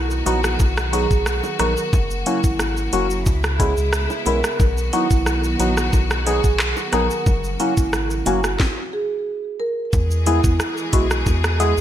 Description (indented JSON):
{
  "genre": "dancehall",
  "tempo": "90 BPM",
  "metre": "4/4",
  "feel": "straight",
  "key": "unclear",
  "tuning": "A4 = 440 Hz",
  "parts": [
    { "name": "warm studio string section", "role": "sustained chords", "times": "0.0-11.8 s", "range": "C#3 to G#4", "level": "-28 LUFS", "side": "left 2 dB", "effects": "sidechain pumping" },
    { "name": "round analog bass", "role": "bass", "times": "0.0-11.8 s", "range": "F#1 to E2", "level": "-22 LUFS", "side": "equal", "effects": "none" },
    { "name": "island pop drum kit", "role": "drums", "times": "0.1-11.8 s", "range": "handclaps, hi-hat, kick drum, rim click, shaker, snare drum", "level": "-21 LUFS", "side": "equal", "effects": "gated reverb" },
    { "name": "marimba with soft mallets", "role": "melody", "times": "0.3-11.7 s", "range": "E4 to A#4", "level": "-24 LUFS", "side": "right 2 dB", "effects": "ping-pong delay" },
    { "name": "percussive organ stab", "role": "accompaniment", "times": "0.3-11.7 s", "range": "F#3 to G#4", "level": "-25 LUFS", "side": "left 2 dB", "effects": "chorus" },
    { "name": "bongos", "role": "percussion", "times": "0.3-11.4 s", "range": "none", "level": "-34 LUFS", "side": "right 3 dB", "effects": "none" }
  ],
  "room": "light reverb",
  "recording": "bright 1980s-style digital production",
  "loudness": "-17 LUFS",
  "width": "side -11 dB against mid",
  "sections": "0.0-9.9 A section; 9.9-11.8 B section",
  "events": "stop 8.6-9.9",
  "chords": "0.0 B; 1.9 F#; 3.3 C#m7; 4.6 B; 7.3 F#; 8.6 N.C.; 9.9 E"
}